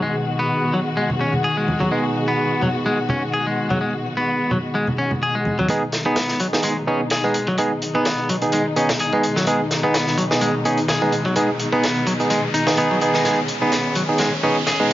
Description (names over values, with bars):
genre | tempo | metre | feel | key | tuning
breakbeat, breaks | 127 BPM | 4/4 | swing 54% on 16ths | G# minor | A4 = 440 Hz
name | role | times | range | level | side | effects
warm symphonic string section | sustained chords | 0.0-14.9 s | B2 to F#4 | -24 LUFS | left 1 dB | sidechain pumping
clean electric guitar | riff | 0.0-14.9 s | F#3 to G#4 | -22 LUFS | left 1 dB | low-pass filter, tape echo
barky tine electric piano | stabs | 0.0-14.9 s | B3 to G#4 | -22 LUFS | right 2 dB | tape echo
congas | percussion | 1.1-5.7 s | none | -26 LUFS | right 1 dB | none
crunchy breakbeat drum kit | drums | 5.7-14.9 s | hi-hat, kick drum, snare drum | -24 LUFS | left 1 dB | high-pass filter on kick, high-pass filter on hats, high-pass filter on snare, high-pass filter on room
riser | sound effects | 7.9-14.9 s | none | -30 LUFS | equal | none
room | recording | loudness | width
moderate studio reverb, RT60 0.6 s | vinyl crackle, low-pass filter, nothing above 7.4 kHz, faint mains hum | -17 LUFS | side -14 dB against mid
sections
0.0-5.7 A section; 5.7-14.9 B section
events
filter sweep on tine electric piano 0.0-5.7; build-up 5.7-14.9; riser 7.9-14.9; drum fill 13.3-14.9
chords
0.0 G#m